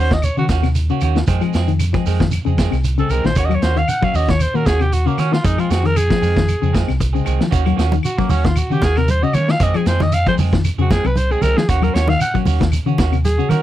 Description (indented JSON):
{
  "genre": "afrobeat",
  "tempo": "115 BPM",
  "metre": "4/4",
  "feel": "swing 55% on 16ths",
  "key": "Eb dorian",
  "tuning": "A4 = 440 Hz",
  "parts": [
    { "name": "raspy alto saxophone", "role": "melody", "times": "0.0-13.6 s", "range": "Bb3 to Gb5", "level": "-20 LUFS", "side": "equal", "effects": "none" },
    { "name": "semi-hollow electric guitar", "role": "stabs", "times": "0.0-13.6 s", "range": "Eb3 to Ab4", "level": "-25 LUFS", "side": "right 11 dB", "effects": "none" },
    { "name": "hollow-body short-scale fingered electric bass", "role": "bass", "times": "0.0-13.6 s", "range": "Bb1 to F3", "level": "-18 LUFS", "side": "equal", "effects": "none" },
    { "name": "semi-hollow electric guitar", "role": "arpeggios", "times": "0.1-13.5 s", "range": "Bb2 to Gb3", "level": "-21 LUFS", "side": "left 9 dB", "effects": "none" },
    { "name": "vintage drum kit", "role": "drums", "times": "0.1-13.6 s", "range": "hi-hat, kick drum, snare drum", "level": "-21 LUFS", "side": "equal", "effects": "none" },
    { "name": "shekere", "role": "percussion", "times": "0.1-13.6 s", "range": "none", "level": "-28 LUFS", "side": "right 5 dB", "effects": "none" },
    { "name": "claves", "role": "percussion", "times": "0.2-13.6 s", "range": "none", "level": "-36 LUFS", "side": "left 7 dB", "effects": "none" },
    { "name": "congas", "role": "percussion", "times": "7.7-13.6 s", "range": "none", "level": "-23 LUFS", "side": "right 3 dB", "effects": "none" }
  ],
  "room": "little or no reverb",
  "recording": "dry, close 1970s-style studio recording",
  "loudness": "-14 LUFS",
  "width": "side -13 dB against mid",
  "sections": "0.0-13.6 A section",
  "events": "alto saxophone solo 0.0-13.6",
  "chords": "0.0 Ebm7; 1.3 Fm7; 3.4 Ebm7; 5.4 Fm7; 7.5 Ebm7; 9.6 Fm7; 11.7 Ebm7"
}